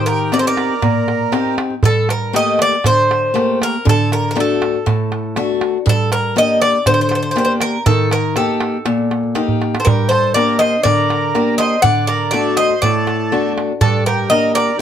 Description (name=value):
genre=greek folk, Greek bouzouki band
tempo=120 BPM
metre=4/4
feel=straight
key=unclear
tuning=A4 = 439 Hz
part: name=Greek bouzouki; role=melody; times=0.0-14.8 s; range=A4 to F#5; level=-16 LUFS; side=left 1 dB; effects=none
part: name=accordion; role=second line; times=0.0-1.6, 9.8-14.8 s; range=D4 to D5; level=-22 LUFS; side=right 7 dB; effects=none
part: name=picked acoustic archtop guitar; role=accompaniment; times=0.0-14.8 s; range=G2 to G4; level=-19 LUFS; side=left 4 dB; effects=none
part: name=darbuka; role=percussion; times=0.1-14.7 s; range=none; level=-19 LUFS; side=right 4 dB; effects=none
room=light reverb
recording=none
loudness=-13 LUFS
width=side -9 dB against mid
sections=0.0-1.8 A section; 1.8-14.8 A section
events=speeding up 0.0-14.8; drum fill 9.5-9.9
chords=0.0 Eb6; 1.8 Gmadd9; 3.9 D; 5.9 Gm; 7.9 Eb; 9.9 Gm; 11.8 D; 13.8 Gm